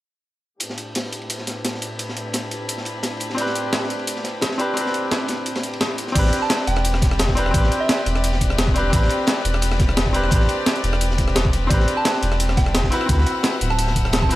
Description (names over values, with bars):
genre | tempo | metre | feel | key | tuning
liquid drum and bass | 173 BPM | 4/4 | straight | A minor | A4 = 440 Hz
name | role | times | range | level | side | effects
rich chamber string section | sustained chords | 0.6-14.4 s | A2 to F#5 | -29 LUFS | left 2 dB | low-pass filter
breakbeat sampler-style drum kit | drums | 0.6-14.4 s | crash cymbal, hi-hat, rim click, snare drum | -24 LUFS | equal | none
crunchy breakbeat drum kit | drums | 0.6-14.4 s | ride cymbal, snare drum | -29 LUFS | equal | high-pass filter on cymbals, high-pass filter on snare, high-pass filter on room
bright grand piano | accompaniment | 3.3-14.4 s | C4 to B4 | -24 LUFS | equal | analog delay
warm sub bass | bass | 6.2-14.4 s | D1 to D2 | -21 LUFS | equal | none
electronic kick drum | drums | 6.2-14.3 s | none | -21 LUFS | equal | none
soft synth bell | melody | 6.4-8.1, 12.0-14.4 s | E5 to A5 | -27 LUFS | right 3 dB | chorus, analog delay
room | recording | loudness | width
light reverb, small room ambience | echo-heavy mix | -18 LUFS | side -16 dB against mid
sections
0.6-6.2 A section; 6.2-14.4 B section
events
filter sweep on string section 0.6-6.2; drop 6.2-14.4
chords
0.6 Am11; 6.2 Am11 (rootless); 12.9 D13